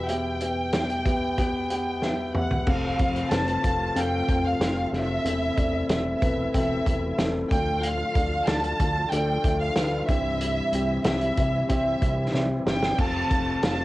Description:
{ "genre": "piano-driven pop", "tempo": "93 BPM", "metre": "4/4", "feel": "straight", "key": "unclear", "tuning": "A4 = 444 Hz", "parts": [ { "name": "warm studio violin section", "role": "melody", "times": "0.0-13.8 s", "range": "E5 to A5", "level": "-28 LUFS", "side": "right 1 dB", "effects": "cassette tape" }, { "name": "dark concert grand piano", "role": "accompaniment", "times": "0.0-13.8 s", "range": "E2 to G5", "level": "-28 LUFS", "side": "left 2 dB", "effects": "cassette tape" }, { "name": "loose indie drum kit", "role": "drums", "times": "0.1-13.8 s", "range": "crash cymbal, hi-hat, kick drum, snare drum, toms", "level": "-27 LUFS", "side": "equal", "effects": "cassette tape" }, { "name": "bright tonewheel organ", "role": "sustained chords", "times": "2.7-13.8 s", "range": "C3 to F4", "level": "-35 LUFS", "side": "right 1 dB", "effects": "chorus vibrato, fast rotary speaker, cassette tape" }, { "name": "fat analog bass", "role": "bass", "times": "2.7-13.8 s", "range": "E1 to D2", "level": "-30 LUFS", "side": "equal", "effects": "none" } ], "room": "moderate studio reverb, RT60 0.5 s", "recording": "home recording on cassette", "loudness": "-22 LUFS", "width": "side -17 dB against mid", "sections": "0.0-2.7 A section; 2.7-13.8 B section", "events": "drum fill 2.0-2.7, 12.3-13.0", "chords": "0.0 Em; 2.7 F; 5.3 Am/E; 7.5 Dm; 10.1 C; 13.0 F" }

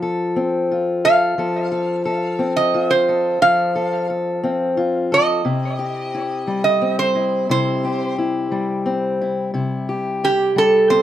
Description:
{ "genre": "acoustic country blues, solo or duo", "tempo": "59 BPM (dotted quarters)", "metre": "12/8", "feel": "straight", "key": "C major", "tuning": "A4 = 440 Hz", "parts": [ { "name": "fingerpicked steel-string acoustic guitar", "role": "accompaniment", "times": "0.0-11.0 s", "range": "C3 to A4", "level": "-20 LUFS", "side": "left 2 dB", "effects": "none" }, { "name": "metal-body resonator slide guitar", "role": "melody", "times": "1.0-11.0 s", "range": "G4 to F5", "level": "-17 LUFS", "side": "right 3 dB", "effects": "analog delay" } ], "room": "light reverb", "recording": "close, detailed microphones", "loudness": "-17 LUFS", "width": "side -11 dB against mid", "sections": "0.0-11.0 A section", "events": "resonator guitar played with a steel bar solo 0.0-11.0", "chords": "0.0 F; 5.4 C" }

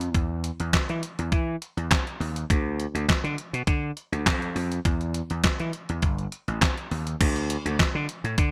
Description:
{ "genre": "early-eighties boogie funk", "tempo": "102 BPM", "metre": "4/4", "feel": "straight", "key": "D dorian", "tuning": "A4 = 442 Hz", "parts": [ { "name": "gritty slap bass", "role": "bass", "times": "0.0-8.5 s", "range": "G1 to E3", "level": "-30 LUFS", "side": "equal", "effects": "overdrive" }, { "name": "detuned 8-bit digital drum machine", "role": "drums", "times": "0.0-8.5 s", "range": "crash cymbal, handclaps, hi-hat, kick drum, snare drum", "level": "-27 LUFS", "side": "equal", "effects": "gated reverb" } ], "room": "little or no reverb", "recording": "bright 1980s-style digital production", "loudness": "-27 LUFS", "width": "mono", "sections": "0.0-7.2 A section; 7.2-8.5 B section", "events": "none", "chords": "none" }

